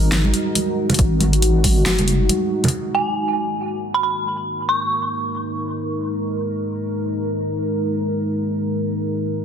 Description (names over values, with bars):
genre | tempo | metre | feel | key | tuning
deep dubstep | 138 BPM | 4/4 | swing 58% on 16ths, half-time | unclear | A4 = 442 Hz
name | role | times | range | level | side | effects
deep dark ambient pad | sustained chords | 0.0-9.4 s | G#3 to A#4 | -22 LUFS | left 1 dB | chorus, built-in reverb
deep soft wobble bass | bass | 0.0-2.3 s | F#1 to G#1 | -18 LUFS | equal | chorus
deep house drum kit | drums | 0.1-2.8 s | hi-hat, snare drum | -22 LUFS | left 1 dB | none
congas | percussion | 0.2-2.7 s | none | -23 LUFS | right 3 dB | dub echo
electronic kick drum | drums | 1.0-1.7 s | none | -20 LUFS | equal | none
dark detuned synth bell | melody | 2.9-5.0 s | G#5 to C#6 | -22 LUFS | right 1 dB | chorus, dub echo
room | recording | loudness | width
moderate echo chamber reverb, RT60 1.3 s | dense, heavily limited modern master | -18 LUFS | side -8 dB against mid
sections
0.0-2.7 A section; 2.7-9.4 B section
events
none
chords
0.0 G#5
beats
0.12 0.56 | 0.99 1.42 1.86 2.29 | 2.73 3.16 3.60 4.03 | 4.47 4.90 5.34 5.77 | 6.21 6.64 7.08 7.51 | 7.95 8.38 8.82 9.25